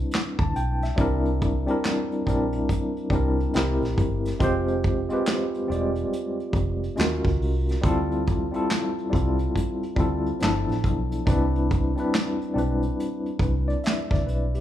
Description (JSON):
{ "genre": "R&B, neo-soul", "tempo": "70 BPM", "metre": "4/4", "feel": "swing 63% on 16ths", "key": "C major", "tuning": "A4 = 440 Hz", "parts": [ { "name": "mellow tine electric piano", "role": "accompaniment", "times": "0.0-14.6 s", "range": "F3 to A5", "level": "-25 LUFS", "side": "left 1 dB", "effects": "medium tremolo" }, { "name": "vintage muted fingered electric bass", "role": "bass", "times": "0.0-14.6 s", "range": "E1 to Eb2", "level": "-27 LUFS", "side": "equal", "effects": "none" }, { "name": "vintage brush drum kit", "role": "drums", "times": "0.1-14.6 s", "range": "handclaps, hi-hat, kick drum, snare drum", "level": "-26 LUFS", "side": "equal", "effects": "none" } ], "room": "light reverb", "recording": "band playing live in one room", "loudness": "-22 LUFS", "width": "side -11 dB against mid", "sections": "0.0-14.6 A section", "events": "none", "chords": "0.0 Cmaj9; 1.0 C7; 3.5 C7b13; 4.4 Fmadd9; 7.0 Ebm11; 7.8 Dm11; 10.4 G13; 11.3 Cmaj9" }